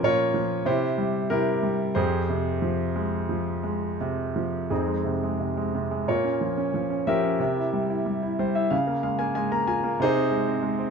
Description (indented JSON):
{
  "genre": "classical, lyrical solo piano",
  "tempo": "89 BPM",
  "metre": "4/4",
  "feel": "uneven beats, rubato",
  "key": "F minor",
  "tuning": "A4 = 440 Hz",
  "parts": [
    { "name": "clear concert grand piano", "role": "solo", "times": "0.0-10.9 s", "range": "F2 to Bb5", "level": "-23 LUFS", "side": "equal", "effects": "none" }
  ],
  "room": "light reverb",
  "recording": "dark, warm production",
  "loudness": "-23 LUFS",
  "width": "side -5 dB against mid",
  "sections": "0.0-4.7 A section; 4.7-10.9 B section",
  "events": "grand piano fill 8.1-10.0",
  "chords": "0.0 Bbm; 0.7 C; 2.0 Fmadd9; 4.7 Fm7; 6.1 Bbm; 7.4 C7; 8.7 Db6; 10.0 Ab/C"
}